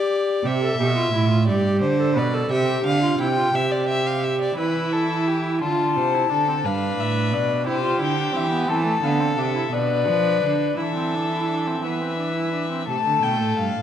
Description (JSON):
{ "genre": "classical, baroque-style fugue for string quartet", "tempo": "58 BPM (dotted quarters)", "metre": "6/8", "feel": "straight", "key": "C major", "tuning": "A4 = 440 Hz", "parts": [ { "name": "rich violin", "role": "second line", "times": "0.0-13.8 s", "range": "F4 to G5", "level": "-26 LUFS", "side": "left 2 dB", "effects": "none" }, { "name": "rich viola", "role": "accompaniment", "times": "0.0-13.8 s", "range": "A3 to B4", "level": "-26 LUFS", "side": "equal", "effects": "none" }, { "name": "rich cello", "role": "bass", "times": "0.4-13.8 s", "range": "G2 to F3", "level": "-23 LUFS", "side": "right 4 dB", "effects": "none" }, { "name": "dark violin", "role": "melody", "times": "4.6-13.8 s", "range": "C5 to A5", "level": "-25 LUFS", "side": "left 8 dB", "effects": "none" } ], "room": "wet concert hall reverb, RT60 1.9 s", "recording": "dark, warm production", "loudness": "-19 LUFS", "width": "side -9 dB against mid", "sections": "0.0-4.6 A section; 4.6-12.9 B section", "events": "none", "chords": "0.4 C; 1.5 G; 2.5 C; 4.6 A5/E; 5.6 Dm7; 6.7 G7; 7.7 C; 8.7 Am; 9.7 Bdim; 10.8 Esus4; 11.8 E5; 12.9 N.C." }